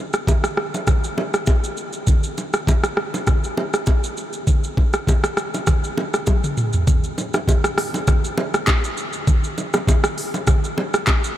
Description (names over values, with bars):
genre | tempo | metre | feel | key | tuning
afrobeats | 100 BPM | 4/4 | swing 55% on 16ths | none | none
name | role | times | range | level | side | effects
afro-pop drum kit | drums | 0.1-11.4 s | handclaps, hi-hat, kick drum, rim click, shaker, toms | -18 LUFS | equal | none
bongos and congas | percussion | 0.3-11.2 s | none | -25 LUFS | right 2 dB | none
room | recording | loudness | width
moderate huge ambient reverb, RT60 7.9 s | dreamy mix soaked in reverb | -18 LUFS | side -12 dB against mid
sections
0.0-6.9 A section; 6.9-11.4 B section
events
drum fill 6.3-6.9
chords
none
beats
0.27 0.87 1.47 | 2.07 2.67 3.27 3.87 | 4.47 5.07 5.67 6.27 | 6.87 7.47 8.07 8.67 | 9.27 9.87 10.47 11.07